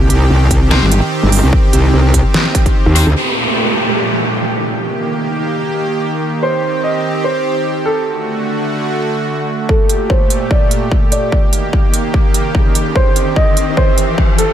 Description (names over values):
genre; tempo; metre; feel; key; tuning
heavy wobble dubstep; 147 BPM; 4/4; swing 54% on 16ths, half-time; G harmonic minor; A4 = 441 Hz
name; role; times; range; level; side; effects
supersaw pad; sustained chords; 0.0-14.5 s; Bb2 to G4; -18 LUFS; right 1 dB; sidechain pumping
metallic wobble bass; bass; 0.0-3.0 s; G1 to Eb2; -11 LUFS; equal; chorus, overdrive
dubstep drum kit; drums; 0.1-3.0, 9.9-14.5 s; hi-hat, snare drum; -18 LUFS; right 1 dB; none
metallic wobble bass; bass; 0.3-3.1 s; G1 to D2; -10 LUFS; equal; distortion, chorus, overdrive
electronic kick drum; drums; 0.5-2.7, 9.7-14.3 s; none; -13 LUFS; equal; overdrive
distorted electric guitar; stabs; 0.7-3.0 s; C4 to C5; -22 LUFS; left 4 dB; none
downlifter and riser; sound effects; 3.2-6.4, 11.5-14.5 s; none; -20 LUFS; equal; none
dark grand piano; melody; 6.4-14.5 s; A4 to Eb5; -18 LUFS; right 1 dB; low-pass filter, tape echo
room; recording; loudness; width
light reverb; none; -12 LUFS; side -10 dB against mid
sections
0.0-3.2 A section; 3.2-9.7 B section; 9.7-14.5 C section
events
drop 0.0-3.2; kick drops out 2.8-3.2; build-up 9.7-14.5; filter sweep on grand piano 9.7-14.5; riser 11.5-14.5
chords
0.0 Cm; 3.2 Gmadd9; 4.8 Eb; 6.4 Cm; 8.1 D; 9.7 Gmadd9; 11.3 Eb; 13.0 Cm